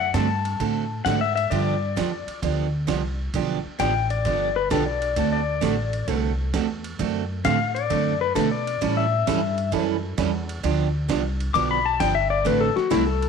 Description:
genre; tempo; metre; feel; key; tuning
country, western swing; 132 BPM; 4/4; swing 68% on 8ths; D mixolydian; A4 = 442 Hz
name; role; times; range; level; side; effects
pedal steel guitar; second line; 0.0-13.3 s; E4 to D6; -23 LUFS; left 9 dB; none
upright bass; bass; 0.0-13.3 s; G1 to B2; -27 LUFS; equal; none
picked steel-string acoustic guitar; accompaniment; 0.1-13.0 s; D3 to A4; -26 LUFS; right 11 dB; none
dusty soul sampler-style drum kit; drums; 0.1-13.3 s; hi-hat, kick drum, ride cymbal, snare drum; -33 LUFS; right 4 dB; none
room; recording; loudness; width
moderate echo chamber reverb, RT60 1.3 s; 1960s-style stereo with parts hard left and right; -21 LUFS; side -6 dB against mid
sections
0.0-13.3 A section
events
pedal steel guitar solo 0.0-13.3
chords
0.0 D7; 1.5 G7; 5.2 D7; 8.8 A7; 10.6 G7; 12.5 D7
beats
0.14 0.60 1.06 | 1.51 1.97 2.43 2.88 | 3.34 3.80 4.25 4.71 | 5.17 5.62 6.08 6.53 | 6.99 7.45 7.90 8.36 | 8.81 9.27 9.72 10.18 | 10.63 11.09 11.54 12.00 | 12.45 12.91

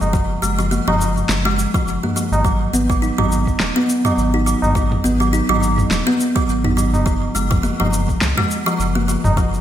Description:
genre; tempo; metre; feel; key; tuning
organic downtempo; 104 BPM; 4/4; swing 56% on 16ths; G# dorian; A4 = 440 Hz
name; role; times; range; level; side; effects
warm sub bass; bass; 0.0-9.6 s; D#1 to C#2; -21 LUFS; equal; sidechain pumping
deep house drum kit; drums; 0.0-9.6 s; cabasa, snare drum, toms; -23 LUFS; equal; small room ambience, gated reverb
tabla; percussion; 0.0-9.3 s; none; -25 LUFS; equal; none
kalimba; arpeggios; 0.1-9.5 s; E#3 to D#4; -19 LUFS; equal; digital delay
electronic kick drum; drums; 0.1-9.5 s; none; -20 LUFS; equal; small room ambience
room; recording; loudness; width
moderate lush hall reverb, RT60 1.7 s; bright 1980s-style digital production; -15 LUFS; side -11 dB against mid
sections
0.0-9.6 A section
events
none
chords
0.0 F#maj7sus2; 2.4 G#m7; 7.1 F#maj7sus2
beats
| 0.14 0.71 1.29 1.87 | 2.45 3.02 3.60 4.18 | 4.75 5.33 5.91 6.48 | 7.06 7.64 8.21 8.79 | 9.37

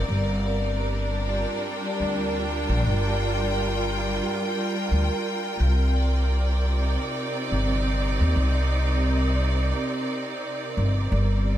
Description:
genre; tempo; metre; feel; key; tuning
ambient dub; 87 BPM; 4/4; swing 55% on 16ths; C minor; A4 = 440 Hz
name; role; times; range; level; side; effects
clear symphonic string section; sustained chords; 0.0-11.6 s; C3 to G5; -26 LUFS; right 1 dB; none
upright bass; bass; 0.0-11.6 s; G1 to Eb2; -23 LUFS; equal; none
room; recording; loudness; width
light reverb; none; -22 LUFS; side -12 dB against mid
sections
0.0-11.6 A section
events
none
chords
0.1 Gm7; 5.6 Cm7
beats
| 0.09 0.78 1.47 2.16 | 2.85 3.54 4.23 4.92 | 5.61 6.29 6.99 7.67 | 8.36 9.05 9.74 10.43 | 11.12

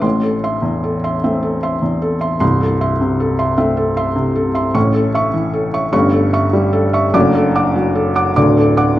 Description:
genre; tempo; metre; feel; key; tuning
classical, romantic nocturne for solo piano; 50 BPM (dotted quarters); 12/8; rubato; A minor, A major from 4.8 s; A4 = 440 Hz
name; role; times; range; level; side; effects
felt-muted upright piano; solo; 0.0-9.0 s; C1 to D6; -13 LUFS; equal; none
room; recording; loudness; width
wet recital hall reverb, RT60 1.3 s; none; -13 LUFS; side -14 dB against mid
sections
0.0-9.0 A section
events
none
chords
0.0 Am; 2.4 Am/C; 4.8 A; 5.9 A7/G; 7.1 D/F#; 8.4 D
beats
| 0.04 1.25 2.42 3.58 | 4.76 5.93 7.15 8.37

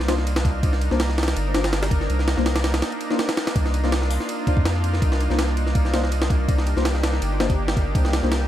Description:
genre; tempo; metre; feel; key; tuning
drum and bass, jungle; 164 BPM; 4/4; swing 53% on 16ths; C minor; A4 = 441 Hz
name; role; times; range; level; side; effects
lush unison pad; sustained chords; 0.0-8.5 s; Bb3 to Bb4; -28 LUFS; equal; chorus
soft dub sub bass; bass; 0.0-8.5 s; G1 to F2; -22 LUFS; equal; none
breakbeat sampler-style drum kit; drums; 0.0-8.4 s; hi-hat, kick drum, ride cymbal, snare drum; -23 LUFS; equal; none
deep mellow chord stab; stabs; 0.1-8.3 s; Bb3 to C5; -29 LUFS; left 4 dB; chorus, phaser, cassette tape, dub echo
room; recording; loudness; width
digital ambience; none; -19 LUFS; side -12 dB against mid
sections
0.0-8.5 A section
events
break 2.8-3.6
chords
0.0 Cm11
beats
0.27 | 0.63 1.00 1.36 1.73 | 2.10 2.46 2.83 3.19 | 3.56 3.92 4.29 4.66 | 5.02 5.39 5.75 6.12 | 6.49 6.85 7.22 7.58 | 7.95 8.31

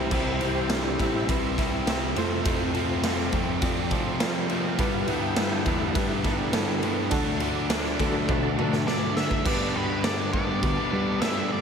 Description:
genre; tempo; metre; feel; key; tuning
classic rock; 103 BPM; 4/4; straight; G mixolydian; A4 = 440 Hz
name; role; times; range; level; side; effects
tonewheel organ; sustained chords; 0.0-11.6 s; E3 to D5; -33 LUFS; equal; chorus vibrato, fast rotary speaker
crunchy overdriven guitar; riff; 0.0-11.6 s; F2 to E4; -30 LUFS; right 10 dB; slapback echo
overdriven electric guitar; riff; 0.0-11.6 s; F2 to D4; -30 LUFS; left 10 dB; slapback echo
growling picked electric bass; bass; 0.0-11.6 s; A1 to G3; -32 LUFS; equal; overdrive
barky reed electric piano; accompaniment; 0.1-11.6 s; D4 to D5; -36 LUFS; right 4 dB; overdrive, medium tremolo, slapback echo
raw garage drum kit; drums; 0.1-11.4 s; crash cymbal, kick drum, ride cymbal, snare drum, toms; -28 LUFS; equal; none
octave-fuzz lead guitar; melody; 8.9-11.6 s; B4 to E5; -31 LUFS; equal; distortion
room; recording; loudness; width
moderate lush hall reverb, RT60 1.9 s, small room ambience; big arena sound; -23 LUFS; side -6 dB against mid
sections
0.0-9.5 A section; 9.5-11.6 B section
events
drum fill 8.3-9.5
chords
0.0 C; 2.2 F; 4.8 G6; 7.1 D; 9.5 G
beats
| 0.12 0.70 1.29 1.88 | 2.46 3.04 3.63 4.21 | 4.79 5.38 5.96 6.54 | 7.13 7.71 8.29 8.88 | 9.46 10.05 10.63 11.22

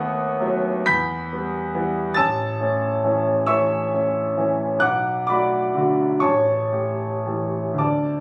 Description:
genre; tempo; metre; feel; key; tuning
classical, romantic nocturne for solo piano; 36-46 BPM (dotted quarters); 6/8; rubato; unclear; A4 = 441 Hz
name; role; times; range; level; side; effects
clear concert grand piano; solo; 0.0-8.2 s; A1 to B6; -22 LUFS; equal; none
room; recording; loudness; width
light reverb; recorded on a phone in the room, studio reverb; -22 LUFS; mono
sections
0.0-8.2 A section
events
none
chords
0.0 B7/D#; 0.9 Em; 2.2 A; 4.8 Bm7; 6.2 A7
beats
0.86 | 2.17 3.47 | 4.82 6.20 | 7.76

